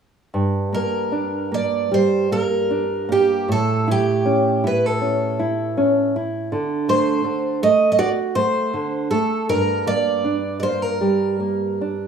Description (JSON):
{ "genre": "fado-style ballad", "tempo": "72-82 BPM", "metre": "4/4", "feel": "rubato", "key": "unclear", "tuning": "A4 = 442 Hz", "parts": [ { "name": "nylon-string guitar", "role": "accompaniment", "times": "0.3-12.1 s", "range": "G2 to F#4", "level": "-20 LUFS", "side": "right 2 dB", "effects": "plate reverb" }, { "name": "picked twelve-string acoustic guitar", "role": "melody", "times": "0.7-12.1 s", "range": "G4 to Eb5", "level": "-20 LUFS", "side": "right 2 dB", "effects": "plate reverb" } ], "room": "wet small room reverb, RT60 0.5 s", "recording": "rough home demo mix, studio ambience", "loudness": "-18 LUFS", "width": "side -7 dB against mid", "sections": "0.3-12.1 A section", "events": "none", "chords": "0.3 Gm; 3.5 A7; 6.5 D7; 9.5 Gm" }